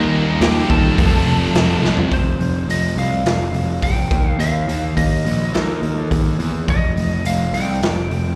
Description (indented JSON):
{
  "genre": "quiet-loud alternative rock",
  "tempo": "105 BPM",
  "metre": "4/4",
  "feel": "straight",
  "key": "unclear",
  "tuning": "A4 = 440 Hz",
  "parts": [
    { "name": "lightly driven lead guitar", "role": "melody", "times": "0.0-8.4 s", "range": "Eb4 to A5", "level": "-27 LUFS", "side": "equal", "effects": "plate reverb, slapback echo, digital delay" },
    { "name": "fuzz guitar", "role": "riff", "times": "0.0-2.1 s", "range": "F2 to Eb4", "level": "-23 LUFS", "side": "equal", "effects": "distortion, slapback echo" },
    { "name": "heavy high-gain guitar", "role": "riff", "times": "0.0-2.1 s", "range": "F2 to Eb4", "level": "-27 LUFS", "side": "equal", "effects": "distortion, slapback echo" },
    { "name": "thick fuzz guitar", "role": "riff", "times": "0.0-2.1 s", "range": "F2 to Eb4", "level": "-26 LUFS", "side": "equal", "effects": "none" },
    { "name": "fuzz picked electric bass", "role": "bass", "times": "0.0-8.4 s", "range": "F1 to E2", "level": "-21 LUFS", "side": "equal", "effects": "overdrive" },
    { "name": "raw garage drum kit", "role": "drums", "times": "0.4-8.2 s", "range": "hi-hat, kick drum, snare drum, toms", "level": "-23 LUFS", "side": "equal", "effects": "none" }
  ],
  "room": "light reverb",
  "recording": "live gig heard through the venue's PA, recital hall reverb",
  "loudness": "-18 LUFS",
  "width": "mono",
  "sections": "0.0-2.1 A section; 2.1-8.4 B section",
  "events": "drum fill 1.8; half time 2.1-8.4",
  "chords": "0.0 Eb; 1.0 F; 2.1 F5; 4.1 Ebsus2; 6.7 F5"
}